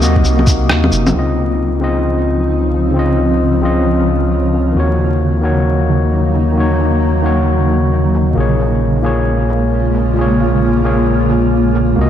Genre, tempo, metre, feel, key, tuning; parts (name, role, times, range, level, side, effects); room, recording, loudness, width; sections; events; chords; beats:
future garage; 133 BPM; 4/4; swing 63% on 16ths; Bb minor; A4 = 440 Hz
overdriven tine electric piano; accompaniment; 0.0-12.1 s; Bb2 to Eb5; -16 LUFS; left 2 dB; sidechain pumping, ping-pong delay
granular cloud pad; sustained chords; 0.0-12.1 s; C3 to F4; -17 LUFS; right 1 dB; built-in reverb, sidechain pumping
soft dub sub bass; bass; 0.0-12.1 s; Gb1 to Eb2; -16 LUFS; equal; sidechain pumping
electronic shaker, bongos and rim click; drums; 0.0-11.9 s; -20 LUFS; equal; low-pass filter on perc, low-pass filter on snare
electronic kick drum; drums; 0.2-0.6 s; -13 LUFS; equal
moderate lush hall reverb, RT60 1.7 s, digital ambience; vinyl crackle; -12 LUFS; side -10 dB against mid
0.0-1.1 A section; 1.1-12.1 B section
kick drops out 0.7-1.1
0.0 Cm7b5; 1.1 Dbmaj9; 4.8 Ebm7; 8.4 Bbm7
0.24 0.70 | 1.15 1.60 2.05 2.50 | 2.95 3.40 3.85 4.30 | 4.76 5.21 5.66 6.11 | 6.56 7.01 7.46 7.91 | 8.37 8.82 9.27 9.72 | 10.17 10.62 11.07 11.52 | 11.97